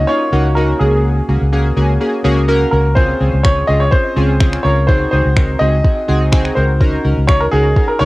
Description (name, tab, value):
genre	dance-pop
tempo	125 BPM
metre	4/4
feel	straight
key	Db major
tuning	A4 = 441 Hz
part	clear baby grand piano	melody	0.0-8.1 s	Ab4 to Eb5	-17 LUFS	equal	cassette tape, analog delay
part	vintage muted fingered electric bass	bass	0.0-8.1 s	Db2	-15 LUFS	equal	sidechain pumping
part	chorused retro synth keys	accompaniment	0.1-8.1 s	Bb3 to Bb4	-18 LUFS	equal	sidechain pumping, cassette tape, plate reverb
part	smooth R&B drum kit	drums	3.0-7.9 s	finger snaps, kick drum	-13 LUFS	equal	none
room	light reverb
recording	home recording on cassette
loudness	-11 LUFS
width	side -20 dB against mid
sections	0.0-8.1 A section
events	none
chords	0.0 Ebm7; 0.8 Gbadd9/Db; 3.0 Dbmaj7; 4.9 Ab7/Db; 6.8 Ebm7/Db